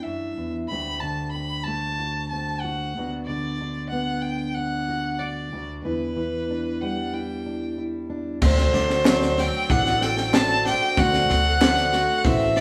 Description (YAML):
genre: indie folk with a building arrangement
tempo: 93 BPM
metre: 4/4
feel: straight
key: unclear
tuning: A4 = 440 Hz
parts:
  - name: rich fiddle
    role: melody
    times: 0.0-12.6 s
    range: B4 to B5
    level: -27 LUFS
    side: equal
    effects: none
  - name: fingerpicked steel-string acoustic guitar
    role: accompaniment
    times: 0.0-8.4 s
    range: D2 to F#4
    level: -31 LUFS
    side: equal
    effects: none
  - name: picked twelve-string acoustic guitar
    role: accompaniment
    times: 8.4-12.6 s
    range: D3 to A4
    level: -30 LUFS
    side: equal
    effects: none
  - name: harpsichord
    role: arpeggios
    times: 8.4-12.6 s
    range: F#3 to A4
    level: -31 LUFS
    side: equal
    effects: none
  - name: upright bass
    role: bass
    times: 8.4-12.6 s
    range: A1 to D2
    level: -27 LUFS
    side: equal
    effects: none
  - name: compact cocktail drum kit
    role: drums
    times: 8.4-12.6 s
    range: crash cymbal, kick drum, snare drum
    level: -26 LUFS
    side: equal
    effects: none
  - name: group handclap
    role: percussion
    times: 9.1-11.8 s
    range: none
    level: -34 LUFS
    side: equal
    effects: none
room: moderate studio reverb, RT60 0.8 s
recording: band playing live in one room, studio reverb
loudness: -24 LUFS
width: mono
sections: 0.0-8.4 A section; 8.4-12.6 B section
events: none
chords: 0.0 E7(no3); 0.7 D7; 3.0 D6; 5.9 Em7; 8.4 D7